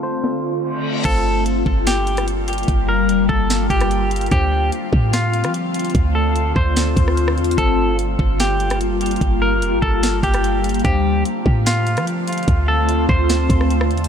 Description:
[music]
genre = hip hop, atmospheric cloud-rap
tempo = 147 BPM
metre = 4/4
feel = half-time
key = unclear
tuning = A4 = 440 Hz
[part]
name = clean electric guitar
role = melody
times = 0.0-14.1 s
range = F4 to C5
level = -22 LUFS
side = equal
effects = spring reverb, low-pass filter, digital delay
[part]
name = ethereal airy pad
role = sustained chords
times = 0.0-14.1 s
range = D3 to F4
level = -21 LUFS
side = left 2 dB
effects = ensemble chorus, built-in reverb, phaser, sidechain pumping
[part]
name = celesta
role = texture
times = 0.0-14.1 s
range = C4 to A5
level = -36 LUFS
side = left 3 dB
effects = none
[part]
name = trap drum kit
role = drums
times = 0.2-14.1 s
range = crash cymbal, hi-hat, kick drum, rim click, snare drum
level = -22 LUFS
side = equal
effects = none
[part]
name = reverse cymbal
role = sound effects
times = 0.7-1.0 s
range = none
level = -29 LUFS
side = left 6 dB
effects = none
[part]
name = clean 808-style bass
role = bass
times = 1.0-14.1 s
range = F1 to F3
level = -20 LUFS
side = equal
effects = none
[sound]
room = digital ambience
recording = low-pass filter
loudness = -15 LUFS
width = side -8 dB against mid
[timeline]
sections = 0.0-1.0 A section; 1.0-14.1 B section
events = break 0.0-1.0; filter sweep 0.0-1.0; reverse cymbal 0.7-1.0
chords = 0.0 Dm7; 1.0 Gm11; 4.3 Dm7; 7.6 Gm11; 10.8 Dm7

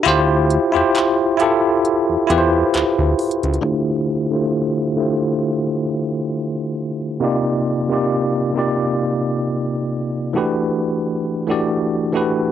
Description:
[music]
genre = contemporary R&B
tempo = 67 BPM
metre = 4/4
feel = swing 54% on 16ths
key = unclear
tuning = A4 = 443 Hz
[part]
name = bell-like tine electric piano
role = accompaniment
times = 0.0-12.5 s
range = C3 to D5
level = -17 LUFS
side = equal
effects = fast stereo tremolo, low-pass filter, cassette tape
[part]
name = fat analog bass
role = bass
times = 0.1-3.6 s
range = C#2 to E2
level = -20 LUFS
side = equal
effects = none
[part]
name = trap drum kit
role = drums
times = 0.1-3.6 s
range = handclaps, hi-hat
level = -26 LUFS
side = equal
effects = cassette tape
[sound]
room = light reverb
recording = home recording on cassette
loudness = -16 LUFS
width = side -10 dB against mid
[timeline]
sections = 0.0-3.6 A section; 3.6-12.5 B section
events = break 0.1-3.6; filter sweep on tine electric piano 3.6-12.5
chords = 0.1 Dm11; 7.2 Cm11; 10.4 Em11

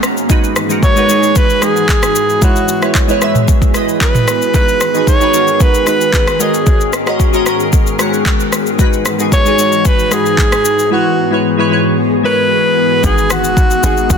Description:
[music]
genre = amapiano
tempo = 113 BPM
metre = 4/4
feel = straight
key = G# minor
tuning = A4 = 441 Hz
[part]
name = glassy digital keys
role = accompaniment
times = 0.0-14.2 s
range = G#3 to A#5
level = -16 LUFS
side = equal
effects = chorus, phaser
[part]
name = glassy FM pad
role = sustained chords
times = 0.0-14.2 s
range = G#2 to A#4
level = -18 LUFS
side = left 2 dB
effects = ensemble chorus, built-in reverb
[part]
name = afro-pop drum kit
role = drums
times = 0.0-14.2 s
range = handclaps, kick drum, rim click, shaker, toms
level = -13 LUFS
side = equal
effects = none
[part]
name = breathy alto saxophone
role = melody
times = 0.8-14.2 s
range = F#4 to C#5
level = -14 LUFS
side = right 1 dB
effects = digital delay
[part]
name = tight log drum bass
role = bass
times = 13.0-14.2 s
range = F#1 to G#1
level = -18 LUFS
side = equal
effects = none
[sound]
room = light reverb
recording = dense, heavily limited modern master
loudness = -10 LUFS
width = side -6 dB against mid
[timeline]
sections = 0.0-13.0 A section; 13.0-14.2 B section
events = synth keys fill 0.0; drop 13.0-14.2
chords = 0.3 Emaj9/G#; 2.4 F#9sus4/G#; 4.5 G#m7; 6.4 Bmaj13/G#; 8.8 Emaj9/G#; 10.9 F#9sus4/G#; 13.0 G#m7

